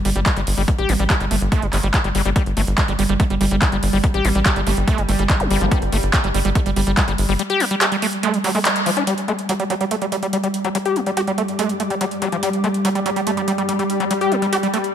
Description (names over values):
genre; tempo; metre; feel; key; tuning
psychedelic trance; 143 BPM; 4/4; straight; unclear; A4 = 439 Hz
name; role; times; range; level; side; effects
pulsing gated texture; sustained chords; 0.0-14.9 s; G3; -25 LUFS; right 1 dB; chorus, built-in reverb, sidechain pumping
screaming distorted acid line; riff; 0.1-14.8 s; F3 to G4; -22 LUFS; moving between left 6 dB and right 6 dB; distortion, chorus, auto-pan, sidechain pumping, dub echo
tight sequencer bass; bass; 0.1-7.4 s; G1 to A1; -20 LUFS; equal; none
big-room dance drum kit; drums; 0.1-14.9 s; handclaps, hi-hat; -24 LUFS; right 1 dB; overdrive, studio reverb
electronic kick drum; drums; 0.3-7.1 s; none; -18 LUFS; equal; studio reverb
zap; sound effects; 5.4-5.5 s; none; -27 LUFS; equal; none
granular cloud pad; texture; 10.7-14.9 s; G3 to D6; -26 LUFS; equal; built-in reverb, sidechain pumping
room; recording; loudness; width
light reverb; none; -17 LUFS; side -9 dB against mid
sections
0.0-9.1 A section; 9.1-14.9 B section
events
band accent 8.7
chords
0.0 G5